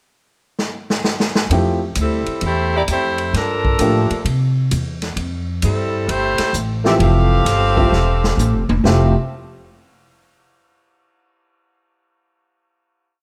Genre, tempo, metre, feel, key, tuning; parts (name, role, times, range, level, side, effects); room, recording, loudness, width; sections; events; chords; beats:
jazz, big band swing; 131 BPM; 4/4; swing 67% on 8ths; F major; A4 = 441 Hz
swinging big-band drum kit; drums; 0.6-9.0 s; hi-hat, kick drum, ride cymbal, snare drum, toms; -25 LUFS; equal
warm baby grand piano; accompaniment; 1.5-4.1, 6.8-9.1 s; E3 to G4; -22 LUFS; equal
upright bass; bass; 1.5-9.1 s; E1 to C3; -21 LUFS; equal
clear saxophone section; melody; 2.0-9.1 s; F3 to F5; -22 LUFS; equal
light reverb; -18 LUFS; mono
0.0-1.5 pickup bar; 1.5-8.8 A section; 8.8-10.7 final chord
drum fill 0.6-1.5, 7.9-8.8
0.0 N.C.; 1.5 Fmaj9; 3.3 Gm9; 4.3 C; 5.2 Fmaj9
0.13 0.59 1.05 | 1.51 1.97 2.42 2.88 | 3.34 3.80 4.26 4.72 | 5.17 5.63 6.09 6.55 | 7.01 7.47 7.93 8.39 | 8.85